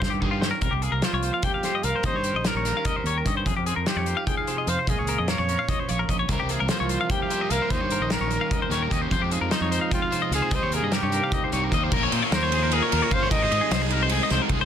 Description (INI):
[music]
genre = math rock and midwest emo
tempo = 298 BPM (eighths)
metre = 7/8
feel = straight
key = unclear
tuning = A4 = 440 Hz
[part]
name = twelve-string electric guitar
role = accompaniment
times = 0.0-13.3 s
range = F2 to Ab4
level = -33 LUFS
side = right 7 dB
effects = none
[part]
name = clean electric guitar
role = arpeggios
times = 0.0-14.7 s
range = F4 to G5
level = -28 LUFS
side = left 6 dB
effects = harmonic tremolo, plate reverb
[part]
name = growling fingered electric bass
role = bass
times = 0.0-14.7 s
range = G1 to Bb2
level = -28 LUFS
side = equal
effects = overdrive
[part]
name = loose indie drum kit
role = drums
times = 0.0-14.6 s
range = crash cymbal, hi-hat, kick drum, ride cymbal, snare drum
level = -27 LUFS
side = equal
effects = none
[part]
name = overdriven electric guitar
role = riff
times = 0.2-0.5, 6.3-14.7 s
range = Ab2 to Bb4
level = -30 LUFS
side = right 1 dB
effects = spring reverb
[part]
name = warm trumpet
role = melody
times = 1.0-13.9 s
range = Eb4 to Eb5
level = -29 LUFS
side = right 1 dB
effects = plate reverb, tape echo
[sound]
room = light reverb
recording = dense, heavily limited modern master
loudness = -22 LUFS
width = side -9 dB against mid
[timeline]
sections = 0.6-11.9 A section; 11.9-14.7 B section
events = drum fill 0.0-0.6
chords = 0.0 Bbm7; 0.6 C7sus4; 2.0 Eb7; 3.5 Fm7; 4.9 Bbm7; 6.3 C7sus4; 7.7 Eb7; 9.1 Fm7; 10.5 Cm7; 11.9 Bbm7; 13.3 Ab